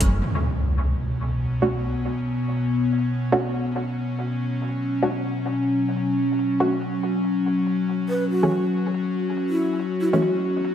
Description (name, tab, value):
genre	deep dubstep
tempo	141 BPM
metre	4/4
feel	swing 58% on 16ths, half-time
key	unclear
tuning	A4 = 439 Hz
part	electronic hi-hat	drums	0.0-10.7 s	none	-35 LUFS	equal	overdrive, low-pass filter on snare, low-pass filter on hats, low-pass filter on room
part	overtone-sweeping drone	sustained chords	0.7-10.7 s	B2 to F#4	-23 LUFS	left 1 dB	chorus, built-in reverb
part	impact	sound effects	0.2-1.9 s	none	-26 LUFS	equal	none
part	filtered dub chord stab	stabs	1.6-10.2 s	E3 to F#4	-26 LUFS	right 1 dB	chorus, dub echo
part	mellow hollow long shakuhachi	melody	8.1-10.2 s	E4 to B4	-27 LUFS	equal	dub echo
room	wet echo chamber reverb, RT60 1.8 s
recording	none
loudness	-21 LUFS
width	side -9 dB against mid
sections	0.2-10.7 A section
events	impact 0.2-1.9; filter sweep on synth stab 0.2-10.7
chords	0.2 B5; 7.0 F#5